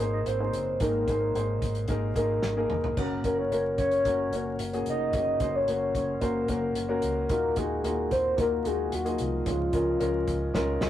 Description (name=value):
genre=piano-driven pop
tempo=111 BPM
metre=4/4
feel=straight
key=unclear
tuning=A4 = 440 Hz
part: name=soft octave-layered synth lead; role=melody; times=0.0-10.9 s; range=F4 to Eb5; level=-28 LUFS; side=left 1 dB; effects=chorus, phaser
part: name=warm upright piano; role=accompaniment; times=0.0-10.9 s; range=Ab2 to Db5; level=-29 LUFS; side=left 1 dB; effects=none
part: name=vintage muted fingered electric bass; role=bass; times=0.0-10.9 s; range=F1 to Eb2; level=-34 LUFS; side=equal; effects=none
part: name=damped 70s drum kit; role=drums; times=0.0-10.9 s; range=hi-hat, kick drum, snare drum, splash cymbal, toms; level=-33 LUFS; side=equal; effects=none
room=moderate small room reverb, RT60 0.5 s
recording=rough rehearsal-room recording, vinyl crackle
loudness=-25 LUFS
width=side -12 dB against mid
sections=0.0-10.9 A section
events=drum fill 2.4-3.0, 10.5-10.9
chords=0.0 Absus2; 3.0 Gb; 7.3 Ebmadd9; 9.5 Db